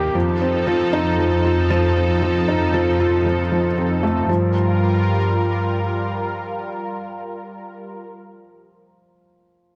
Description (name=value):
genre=piano and strings electronica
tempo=116 BPM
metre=4/4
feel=straight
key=G minor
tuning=A4 = 440 Hz
part: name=lush unison pad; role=sustained chords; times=0.0-8.1 s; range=Eb3 to Bb4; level=-27 LUFS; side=equal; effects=chorus, phaser
part: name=felt-muted upright piano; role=riff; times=0.0-9.8 s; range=F3 to Bb4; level=-22 LUFS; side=equal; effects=delay
part: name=clear chamber double bass section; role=bass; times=0.0-5.8 s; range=Eb2 to G2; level=-24 LUFS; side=equal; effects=none
room=moderate concert hall reverb, RT60 2.5 s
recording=dark, warm production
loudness=-19 LUFS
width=mono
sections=0.0-4.3 A section; 4.3-8.4 B section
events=drop 0.0-4.3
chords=0.2 F7; 4.3 Gm7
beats=| 0.15 0.67 1.19 1.71 | 2.22 2.74 3.26 3.77 | 4.29 4.81 5.33 5.84 | 6.36 6.88 7.39 7.91